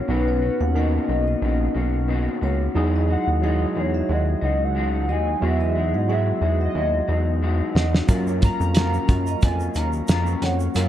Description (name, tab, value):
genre	indie pop, bedroom pop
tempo	90 BPM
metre	4/4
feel	swing 55% on 16ths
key	unclear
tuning	A4 = 438 Hz
part	warbly nostalgic lead	melody	0.0-10.9 s	B4 to A#5	-28 LUFS	left 1 dB	lush chorus, analog delay
part	electric guitar through a small old amp	accompaniment	0.0-10.9 s	B2 to F#4	-28 LUFS	left 5 dB	analog chorus, vibrato effect
part	tine electric piano	accompaniment	0.0-10.9 s	F#3 to B4	-27 LUFS	right 3 dB	none
part	chorused synth bass	bass	0.0-10.9 s	A#1 to G#2	-22 LUFS	equal	none
part	vibraphone with medium mallets	second line	0.3-10.6 s	C#5 to F#5	-35 LUFS	right 4 dB	wide subtle chorus, analog delay
part	cloth-damped thuddy drum kit	drums	7.8-10.9 s	hi-hat, kick drum, snare drum	-20 LUFS	equal	none
part	tube shaker	percussion	8.1-10.9 s	none	-44 LUFS	right 8 dB	none
room	studio reverb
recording	dark, warm production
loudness	-19 LUFS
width	side -11 dB against mid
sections	0.0-10.9 A section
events	drum fill 7.4-8.1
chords	0.0 Bmaj9; 2.8 Emaj9; 8.1 F#maj7